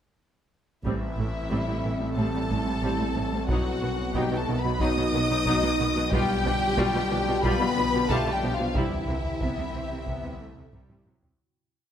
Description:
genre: cinematic, hybrid orchestral and electronic film score.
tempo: 91 BPM.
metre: 4/4.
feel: straight.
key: A dorian.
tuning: A4 = 440 Hz.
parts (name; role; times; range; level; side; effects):
warm symphonic violin section; melody; 0.8-11.1 s; E5 to D#6; -31 LUFS; left 2 dB; none.
dark French horn section; sustained chords; 0.8-11.1 s; E3 to D#4; -33 LUFS; left 3 dB; none.
phased detuned saw bass; bass; 0.8-11.4 s; A1 to C2; -34 LUFS; equal; phaser.
warm symphonic double bass section; bass; 0.8-11.1 s; A1 to C2; -34 LUFS; right 2 dB; none.
solo taiko drums; drums; 0.8-11.5 s; none; -34 LUFS; equal; none.
rich symphonic violin section; second line; 0.9-11.0 s; E4 to D#5; -34 LUFS; left 2 dB; none.
clear symphonic viola section; accompaniment; 0.9-11.4 s; D#3 to F4; -32 LUFS; equal; none.
warbly tape-like pad; sustained chords; 0.9-11.4 s; C3 to G5; -33 LUFS; right 1 dB; chorus, built-in reverb.
rich symphonic cello section; bass; 0.9-11.3 s; A2 to C3; -33 LUFS; right 2 dB; none.
room: moderate scoring stage reverb, RT60 1.7 s.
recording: none.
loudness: -24 LUFS.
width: side -9 dB against mid.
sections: 0.8-11.4 theme.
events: fade-out 8.8-11.4; drum fill 10.7-11.4.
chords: 0.8 Am7; 3.5 B; 6.1 G7/B; 8.8 C.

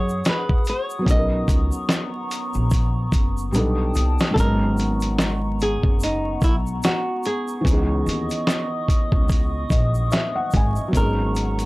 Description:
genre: lo-fi hip hop.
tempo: 73 BPM.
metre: 4/4.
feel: swing 57% on 16ths.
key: G# minor.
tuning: A4 = 440 Hz.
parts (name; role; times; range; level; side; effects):
flamenco guitar; melody; 0.0-11.7 s; D#4 to D#5; -26 LUFS; equal; low-pass filter.
felt-muted upright piano; accompaniment; 0.0-11.7 s; G#2 to G#5; -27 LUFS; equal; cassette tape, low-pass filter.
warbly tape-like pad; sustained chords; 0.0-11.7 s; B3 to D#6; -30 LUFS; left 1 dB; chorus, built-in reverb, low-pass filter.
upright bass; bass; 0.0-11.7 s; F#1 to F#2; -23 LUFS; equal; none.
egg shaker; percussion; 0.1-11.7 s; none; -43 LUFS; right 2 dB; none.
dusty soul sampler-style drum kit; drums; 0.3-11.7 s; hi-hat, kick drum, snare drum; -20 LUFS; equal; none.
room: little or no reverb.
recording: dry, gritty hardware recording, transformer saturation, vinyl crackle.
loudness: -19 LUFS.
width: side -21 dB against mid.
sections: 0.0-4.4 A section; 4.4-11.7 B section.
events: drum fill 3.5-4.4.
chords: 0.0 Emaj9; 1.1 Bmaj9; 3.5 B7alt; 4.4 G#m11; 7.6 C#m9; 10.9 G#m11.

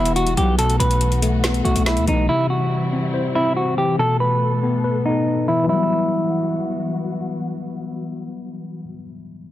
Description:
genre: hip hop, trap.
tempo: 141 BPM.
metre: 4/4.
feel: half-time.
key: E minor.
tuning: A4 = 438 Hz.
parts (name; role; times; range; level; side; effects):
semi-hollow electric guitar; melody; 0.0-6.9 s; D#4 to B4; -21 LUFS; right 1 dB; low-pass filter, ping-pong delay.
mellow tine electric piano; accompaniment; 0.0-9.5 s; B2 to C5; -22 LUFS; left 3 dB; low-pass filter.
warm symphonic string section; sustained chords; 0.0-8.9 s; E3 to A4; -29 LUFS; equal; low-pass filter.
hard-hitting 808-style bass; bass; 0.0-2.3 s; E1 to D#2; -21 LUFS; right 1 dB; none.
trap drum kit; drums; 0.1-2.2 s; hi-hat, snare drum; -26 LUFS; left 1 dB; none.
room: light reverb.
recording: none.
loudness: -17 LUFS.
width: side -13 dB against mid.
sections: 0.0-5.7 A section; 5.7-9.1 B section.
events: filter sweep 0.0-5.7.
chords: 0.0 Emadd9; 0.6 B7sus4; 2.3 C; 4.0 Asus2; 5.7 Emadd9.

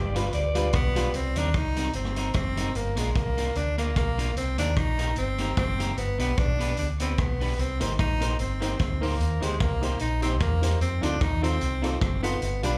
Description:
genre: ska.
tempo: 149 BPM.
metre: 4/4.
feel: swing 55% on 8ths.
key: C minor.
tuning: A4 = 442 Hz.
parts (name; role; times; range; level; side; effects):
raspy alto saxophone; melody; 0.0-0.9 s; G4 to D5; -35 LUFS; equal; tape echo, plate reverb.
fingered electric bass; bass; 0.0-12.8 s; F#1 to F2; -30 LUFS; equal; none.
electric guitar at the edge of break-up; accompaniment; 0.1-12.8 s; G3 to C5; -37 LUFS; equal; plate reverb.
warm upright piano; stabs; 0.2-1.1, 7.8-12.8 s; Eb4 to C5; -36 LUFS; equal; plate reverb.
vintage drum kit; drums; 0.2-12.7 s; hi-hat, kick drum, rim click; -33 LUFS; equal; none.
bright tenor saxophone; melody; 0.8-12.8 s; Ab3 to Eb4; -33 LUFS; equal; plate reverb.
room: light reverb.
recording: live gig heard through the venue's PA, club reverb.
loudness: -26 LUFS.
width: mono.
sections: 0.0-1.1 A section; 1.1-12.8 B section.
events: alto saxophone solo 0.0-1.1.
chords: 0.0 G7; 1.1 Cm7; 2.8 Gm7 (rootless); 4.4 Cm7; 6.0 G; 7.6 Cm7; 9.2 Eb6; 10.8 F7.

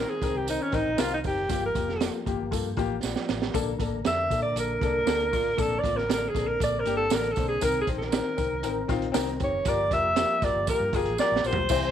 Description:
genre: uptempo 1960s-style soul.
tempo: 118 BPM.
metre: 4/4.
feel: straight.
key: unclear.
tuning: A4 = 441 Hz.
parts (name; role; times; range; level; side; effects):
warm alto saxophone; melody; 0.0-11.9 s; Db4 to E5; -26 LUFS; right 1 dB; none.
dark upright piano; accompaniment; 0.0-11.9 s; Bb3 to D5; -31 LUFS; left 11 dB; none.
tonewheel organ; sustained chords; 0.0-11.9 s; D3 to Bb4; -38 LUFS; right 1 dB; slow rotary speaker, chorus vibrato.
vintage muted fingered electric bass; bass; 0.0-11.9 s; F1 to Bb2; -34 LUFS; equal; none.
crunchy breakbeat drum kit; drums; 0.2-11.9 s; crash cymbal, hi-hat, kick drum, snare drum, toms; -30 LUFS; right 4 dB; vintage 12-bit sampler grit.
tambourine; percussion; 0.2-11.8 s; none; -41 LUFS; right 12 dB; none.
room: light reverb, small room ambience.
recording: 1960s-style stereo with parts hard left and right.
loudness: -24 LUFS.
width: side -9 dB against mid.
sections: 0.0-11.7 A section.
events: alto saxophone solo 0.0-11.7; drum fill 3.0-3.5, 11.2-11.7.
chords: 0.0 Cm7; 1.5 Gm7; 3.5 Bbmaj7; 7.6 Cm7; 9.7 Gm7.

